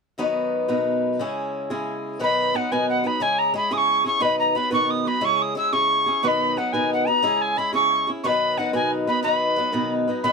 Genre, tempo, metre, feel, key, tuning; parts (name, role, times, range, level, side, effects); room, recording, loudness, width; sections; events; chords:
celtic folk; 119 BPM (dotted quarters); 6/8; straight; B major; A4 = 440 Hz
picked swing-style acoustic guitar; accompaniment; 0.2-10.3 s; B2 to B4; -23 LUFS; left 1 dB
wooden whistle; melody; 2.2-10.3 s; F#5 to E6; -20 LUFS; right 1 dB
little or no reverb; close, detailed microphones; -20 LUFS; side -4 dB against mid
0.2-2.2 A section; 2.2-10.2 B section
0.2 B; 1.2 C#m; 2.2 B; 3.2 C#m; 4.2 B; 5.2 C#m; 6.2 B; 7.2 C#m; 8.2 B